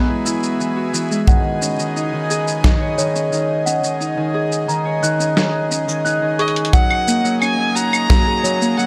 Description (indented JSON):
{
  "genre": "folktronica",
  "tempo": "88 BPM",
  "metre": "4/4",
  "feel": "straight",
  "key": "F# mixolydian",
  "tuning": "A4 = 442 Hz",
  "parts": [
    { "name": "celesta", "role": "second line", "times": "0.0-8.9 s", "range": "C#5 to F#6", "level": "-28 LUFS", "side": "equal", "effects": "tape echo" },
    { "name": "accordion", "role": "sustained chords", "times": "0.0-8.9 s", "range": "C#3 to G#4", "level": "-29 LUFS", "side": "equal", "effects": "none" },
    { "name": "Celtic harp", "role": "arpeggios", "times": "0.0-8.9 s", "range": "D#3 to C#5", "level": "-22 LUFS", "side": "equal", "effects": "none" },
    { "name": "lo-fi sampler-style drum kit", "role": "drums", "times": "0.3-8.9 s", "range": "claves, hi-hat, shaker, snare drum", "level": "-25 LUFS", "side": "equal", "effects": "overdrive" },
    { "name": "kick drum", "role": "drums", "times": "1.3-8.2 s", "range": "none", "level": "-17 LUFS", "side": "equal", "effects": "none" },
    { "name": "rich violin", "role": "melody", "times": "6.4-8.9 s", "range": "D#5 to A#5", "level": "-22 LUFS", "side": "equal", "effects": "vintage 12-bit sampler grit" }
  ],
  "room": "light reverb",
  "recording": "none",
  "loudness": "-18 LUFS",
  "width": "mono",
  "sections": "0.0-6.7 A section; 6.7-8.9 B section",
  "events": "kick drops out 4.0-6.7; drum fill 6.4-6.7",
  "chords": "0.0 Eadd9; 1.3 C#sus2; 6.7 F#add9"
}